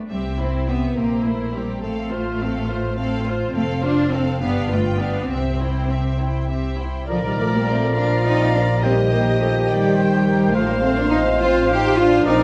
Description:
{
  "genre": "quick classical-period movement for symphony orchestra",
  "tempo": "70 BPM (dotted quarters)",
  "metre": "6/8",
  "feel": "straight",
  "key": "C major, Bb major from 7.1 s",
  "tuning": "A4 = 442 Hz",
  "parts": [
    { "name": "rich chamber cello section", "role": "bass", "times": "0.0-12.4 s", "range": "F3 to G4", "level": "-24 LUFS", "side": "equal", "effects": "none" },
    { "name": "rich studio violin section", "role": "melody", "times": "0.1-12.4 s", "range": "Bb4 to G5", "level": "-36 LUFS", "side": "equal", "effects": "none" },
    { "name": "rich chamber violin section", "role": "second line", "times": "0.1-12.4 s", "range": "E4 to F5", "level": "-34 LUFS", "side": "equal", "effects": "none" },
    { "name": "rich chamber viola section", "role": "accompaniment", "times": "0.1-12.4 s", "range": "C4 to C5", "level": "-29 LUFS", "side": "equal", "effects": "none" },
    { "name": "rich chamber double bass section", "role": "bass", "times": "0.1-12.4 s", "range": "F1 to C2", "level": "-26 LUFS", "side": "equal", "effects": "none" },
    { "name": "mellow large flute ensemble", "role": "second line", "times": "7.1-12.3 s", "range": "F4 to G5", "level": "-30 LUFS", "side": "equal", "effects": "none" },
    { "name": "warm clarinet", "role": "second line", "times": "7.1-12.4 s", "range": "Bb4 to D5", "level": "-31 LUFS", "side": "equal", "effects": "none" },
    { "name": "warm oboe", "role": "second line", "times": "7.1-12.4 s", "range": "D5 to Bb5", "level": "-28 LUFS", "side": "equal", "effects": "none" },
    { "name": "mellow bassoon", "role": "accompaniment", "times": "7.1-12.4 s", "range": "Eb3 to F3", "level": "-30 LUFS", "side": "equal", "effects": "none" },
    { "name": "warm French horn section", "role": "sustained chords", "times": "7.1-12.4 s", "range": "D3 to Eb4", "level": "-27 LUFS", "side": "equal", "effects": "none" }
  ],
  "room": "moderate concert hall reverb, RT60 2.1 s",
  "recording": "dark, warm production",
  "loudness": "-20 LUFS",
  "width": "mono",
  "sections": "0.0-7.1 A section; 7.1-12.4 B section",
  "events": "none",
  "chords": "0.1 C; 1.0 C7/Bb; 1.8 F/A; 3.5 F; 4.4 G7; 5.3 C; 7.1 Bb; 8.8 Cm7/Bb; 10.6 F/A"
}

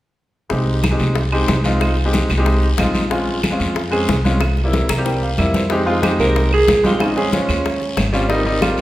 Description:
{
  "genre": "Afro-Cuban jazz",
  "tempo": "185 BPM",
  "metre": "4/4",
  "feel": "straight",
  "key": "F minor",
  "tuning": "A4 = 440 Hz",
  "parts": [
    { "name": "warm concert grand piano", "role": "accompaniment", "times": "0.5-8.8 s", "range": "G3 to Bb5", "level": "-19 LUFS", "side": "equal", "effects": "none" },
    { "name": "upright bass", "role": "bass", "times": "0.5-8.8 s", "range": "Ab1 to F2", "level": "-20 LUFS", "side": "equal", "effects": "none" },
    { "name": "bongos", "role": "percussion", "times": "0.5-8.8 s", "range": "none", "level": "-26 LUFS", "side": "left 4 dB", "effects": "none" },
    { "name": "congas", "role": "percussion", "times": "0.5-8.8 s", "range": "none", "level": "-24 LUFS", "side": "equal", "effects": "none" },
    { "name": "guiro", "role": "percussion", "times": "0.5-8.8 s", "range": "none", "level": "-29 LUFS", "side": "left 3 dB", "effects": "none" },
    { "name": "claves", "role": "percussion", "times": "0.8-8.8 s", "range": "none", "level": "-31 LUFS", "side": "right 5 dB", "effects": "none" },
    { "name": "growling alto saxophone", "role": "melody", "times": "6.2-8.1 s", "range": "Db4 to Bb4", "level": "-17 LUFS", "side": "right 2 dB", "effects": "none" }
  ],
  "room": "wet recital hall reverb, RT60 1.6 s",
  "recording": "recorded in a church or concert hall",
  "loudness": "-15 LUFS",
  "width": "side -15 dB against mid",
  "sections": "0.5-5.7 A section; 5.7-8.8 B section",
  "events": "drum fill 4.7-5.7; grand piano fill 4.7-5.7",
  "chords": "0.5 Fm9/C; 3.1 Bbm7; 4.4 C7; 5.7 Fm9; 7.0 Bbm7; 7.7 Eb13; 8.3 Abmaj7"
}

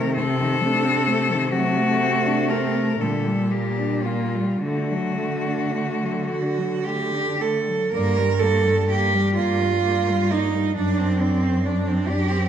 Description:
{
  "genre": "classical, lyrical piece for cello ensemble",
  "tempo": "35-47 BPM (dotted quarters)",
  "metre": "6/8",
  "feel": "rubato",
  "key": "G minor",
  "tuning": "A4 = 440 Hz",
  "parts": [
    { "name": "rich cello", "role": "melody", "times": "0.0-12.5 s", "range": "F4 to D5", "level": "-27 LUFS", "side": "left 6 dB", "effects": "none" },
    { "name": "clear cello", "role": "second line", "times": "0.0-12.5 s", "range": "G3 to Bb4", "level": "-24 LUFS", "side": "right 5 dB", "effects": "none" },
    { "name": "rich cello", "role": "accompaniment", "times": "0.0-12.5 s", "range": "C3 to D4", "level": "-27 LUFS", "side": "left 4 dB", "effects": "none" },
    { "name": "clear cello", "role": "bass", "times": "0.0-12.5 s", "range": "F#2 to D3", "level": "-24 LUFS", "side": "right 1 dB", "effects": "none" }
  ],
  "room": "wet recital hall reverb, RT60 1.7 s",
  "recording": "dark, warm production",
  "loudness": "-19 LUFS",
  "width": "side -9 dB against mid",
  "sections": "0.0-7.9 A section; 7.9-12.5 B section",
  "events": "none",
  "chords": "0.0 Adim/C; 1.5 D7/C; 3.0 Gm/Bb; 4.6 D; 7.9 Gm; 10.8 D7/F#"
}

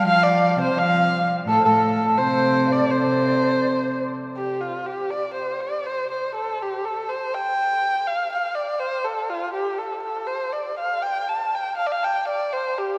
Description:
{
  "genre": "chinese traditional, Chinese chamber ensemble",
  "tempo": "82 BPM",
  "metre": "2/4",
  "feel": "rubato",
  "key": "C zhi mode",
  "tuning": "A4 = 440 Hz",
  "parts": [
    { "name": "dark erhu", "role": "melody", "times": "0.0-13.0 s", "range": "F4 to A5", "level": "-25 LUFS", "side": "equal", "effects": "none" },
    { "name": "hammered dulcimer", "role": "second line", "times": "0.0-5.5 s", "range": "A4 to A5", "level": "-28 LUFS", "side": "equal", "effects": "none" },
    { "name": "large dizi", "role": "second line", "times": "0.0-4.0 s", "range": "A4 to F5", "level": "-31 LUFS", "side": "equal", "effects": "none" },
    { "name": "rich cello", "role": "second line", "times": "0.0-4.0 s", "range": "A2 to F3", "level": "-26 LUFS", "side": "equal", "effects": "none" }
  ],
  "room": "wet cathedral reverb, RT60 5.0 s",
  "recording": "recorded in a church or concert hall",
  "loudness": "-23 LUFS",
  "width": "mono",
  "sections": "0.0-4.4 A section; 4.4-13.0 B section",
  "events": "none",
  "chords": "none"
}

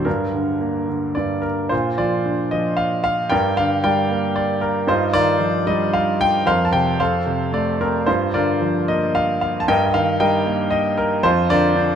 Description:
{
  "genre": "classical, lyrical solo piano",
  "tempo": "113 BPM",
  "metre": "3/4",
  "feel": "rubato",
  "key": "Bb major",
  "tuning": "A4 = 440 Hz",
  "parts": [
    { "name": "clear concert grand piano", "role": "solo", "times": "0.0-12.0 s", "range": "F2 to A5", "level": "-17 LUFS", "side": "equal", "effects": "none" }
  ],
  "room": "moderate huge ambient reverb, RT60 7.1 s",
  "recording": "none",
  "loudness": "-17 LUFS",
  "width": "side -8 dB against mid",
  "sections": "0.0-1.7 A section; 1.7-12.0 B section",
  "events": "none",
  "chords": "0.1 Gm; 1.7 Bb; 3.3 Gm; 4.9 Ebadd9/G; 6.5 Fsus4; 7.0 F; 8.1 Gm7; 9.7 Eb/G; 11.2 Bb/F"
}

